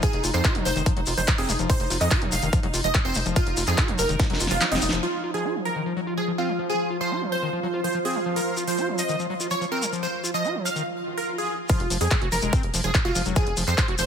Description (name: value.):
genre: psychedelic trance.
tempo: 144 BPM.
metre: 4/4.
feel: straight.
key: F phrygian.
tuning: A4 = 440 Hz.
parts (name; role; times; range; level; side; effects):
supersaw stab; melody; 0.0-14.1 s; Eb4 to F5; -28 LUFS; right 1 dB; phaser, sidechain pumping, digital delay.
bubbling stepped-filter texture; sustained chords; 0.0-10.9 s; F3 to F4; -32 LUFS; equal; chorus, built-in reverb, sidechain pumping.
overdriven acid bass; riff; 0.0-14.0 s; Eb3 to Gb4; -30 LUFS; moving between left 3 dB and right 5 dB; distortion, auto-pan, vintage 12-bit sampler grit, sidechain pumping, digital delay.
big-room dance drum kit; drums; 0.0-5.0, 11.7-14.1 s; handclaps, hi-hat, snare drum; -28 LUFS; left 1 dB; low-pass filter on hats, low-pass filter on snare.
electronic kick drum; drums; 0.0-4.3, 11.7-13.9 s; none; -22 LUFS; equal; none.
shekere; percussion; 0.0-5.0, 8.4-14.1 s; none; -31 LUFS; left 2 dB; none.
tight sequencer bass; bass; 0.1-5.0, 11.8-14.1 s; F1 to F2; -28 LUFS; equal; none.
granular cloud pad; texture; 6.4-10.9 s; F4 to C6; -34 LUFS; right 1 dB; built-in reverb, sidechain pumping.
swell; sound effects; 11.0-11.7 s; none; -34 LUFS; right 1 dB; none.
room: light reverb, digital ambience.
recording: none.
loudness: -22 LUFS.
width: side -8 dB against mid.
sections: 0.0-5.0 A section; 5.0-11.7 B section; 11.7-14.1 A section.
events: drop 0.0-5.0, 11.7-14.1; drum fill 4.2-5.0; kick drops out 4.6-5.0; band accent 4.9; filter sweep on drum 5.0-11.7; break 10.9-11.7; swell 11.0-11.7.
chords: 0.0 F5.